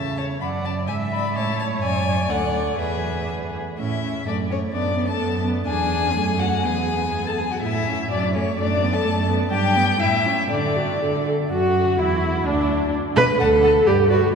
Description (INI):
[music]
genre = quick classical-period movement for string quartet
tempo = 117-132 BPM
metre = 2/4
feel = rubato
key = A major, D major from 9.5 s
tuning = A4 = 442 Hz
[part]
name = rich violin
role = melody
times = 0.0-14.2 s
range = D4 to B5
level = -25 LUFS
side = left 5 dB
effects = none
[part]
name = rich violin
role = second line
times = 0.0-14.2 s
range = C#4 to F#5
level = -28 LUFS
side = left 2 dB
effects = none
[part]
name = rich cello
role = bass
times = 0.0-14.3 s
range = D2 to D3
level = -24 LUFS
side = right 3 dB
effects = none
[part]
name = warm viola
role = accompaniment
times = 0.4-14.3 s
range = F#3 to E5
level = -23 LUFS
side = right 1 dB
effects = none
[sound]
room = wet cathedral reverb, RT60 4.4 s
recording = none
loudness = -19 LUFS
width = side -6 dB against mid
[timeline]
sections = 0.0-3.8 A section; 3.8-11.5 B section; 11.5-14.3 A section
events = none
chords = 0.4 D/F#; 0.9 E7/G#; 1.4 A; 1.8 D/F#; 2.3 D; 2.8 E; 3.8 A; 4.3 D/F# (rootless); 4.7 B5/F#; 5.7 E7; 6.1 F#m; 6.6 E; 7.6 A; 8.1 D/F#; 8.6 B5/F#; 9.5 G; 10.0 A; 10.5 D; 11.5 Esus2; 12.5 Bm/D; 13.4 D5; 13.9 G